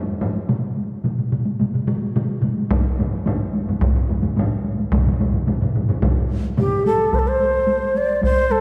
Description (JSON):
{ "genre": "japanese traditional, taiko drum ensemble", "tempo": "108 BPM", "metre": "4/4", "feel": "straight", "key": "unclear", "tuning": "A4 = 440 Hz", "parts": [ { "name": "taiko ensemble", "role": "percussion", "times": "0.2-8.6 s", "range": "none", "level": "-27 LUFS", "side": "equal", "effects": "none" }, { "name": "taiko ensemble", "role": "percussion", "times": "0.2-6.7 s", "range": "none", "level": "-26 LUFS", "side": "equal", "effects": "none" }, { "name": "taiko ensemble", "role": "percussion", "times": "0.5-6.7 s", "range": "none", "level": "-26 LUFS", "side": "equal", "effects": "none" }, { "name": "solo taiko drums", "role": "percussion", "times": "2.7-8.4 s", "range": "none", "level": "-25 LUFS", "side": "equal", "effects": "none" }, { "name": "breathy shakuhachi", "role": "melody", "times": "6.6-8.6 s", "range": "G4 to D5", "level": "-20 LUFS", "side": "equal", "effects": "none" } ], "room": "wet concert hall reverb, RT60 2.4 s", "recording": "heard from further back in the room", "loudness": "-20 LUFS", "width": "mono", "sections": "0.0-7.1 A section; 7.1-8.6 B section", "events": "none", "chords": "none" }